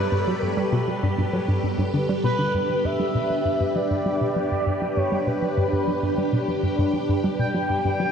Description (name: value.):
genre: ambient, sequencer-driven space music.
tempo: 99 BPM.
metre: 4/4.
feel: straight.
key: G major.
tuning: A4 = 440 Hz.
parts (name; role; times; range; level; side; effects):
expressive synth lead; melody; 0.0-8.1 s; B4 to G5; -27 LUFS; equal; wide subtle chorus, ping-pong delay.
string machine, full ensemble; sustained chords; 0.0-8.1 s; G3 to B4; -25 LUFS; equal; phaser, ensemble chorus.
hollow square pluck; riff; 0.1-8.1 s; G2 to G3; -25 LUFS; equal; chorus, ping-pong delay.
room: wet cathedral reverb, RT60 7.0 s.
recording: in a vast, echoing space.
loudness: -21 LUFS.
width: side -7 dB against mid.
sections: 0.0-2.5 A section; 2.5-8.1 B section.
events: filter sweep on synth arpeggio sound 2.5-8.1.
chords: 0.0 Gmaj7.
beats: | 0.12 0.72 1.33 1.94 | 2.54 3.15 3.76 4.36 | 4.97 5.57 6.18 6.79 | 7.39 8.00.